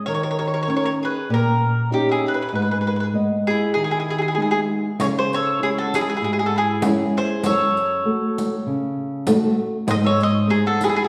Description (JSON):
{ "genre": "italian folk, Italian serenade", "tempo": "98 BPM", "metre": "4/4", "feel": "swing 54% on 8ths", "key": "G# minor, C# harmonic minor from 5.0 s", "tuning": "A4 = 440 Hz", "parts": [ { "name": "mandolin", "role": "second line", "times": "0.0-11.1 s", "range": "D#4 to B#4", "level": "-30 LUFS", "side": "equal", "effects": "none" }, { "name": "mandolin", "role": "melody", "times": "0.1-11.1 s", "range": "G4 to D#5", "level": "-24 LUFS", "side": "equal", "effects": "none" }, { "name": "nylon-string guitar", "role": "accompaniment", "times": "0.1-11.0 s", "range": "F#2 to G5", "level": "-24 LUFS", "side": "equal", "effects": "none" }, { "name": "riq", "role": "percussion", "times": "5.0-11.1 s", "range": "none", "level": "-29 LUFS", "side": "equal", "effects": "none" } ], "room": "wet recital hall reverb, RT60 1.4 s", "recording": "recorded in a church or concert hall", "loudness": "-21 LUFS", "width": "mono", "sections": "0.0-5.0 A section; 5.0-11.1 B section", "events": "none", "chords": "0.1 D#7; 2.5 G#m; 5.0 C#m; 7.4 F#m; 9.9 G#", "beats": "| 0.06 0.67 1.29 1.90 | 2.52 3.13 3.75 4.37 | 4.99 5.60 6.22 6.83 | 7.44 8.05 8.66 9.27 | 9.88 10.48" }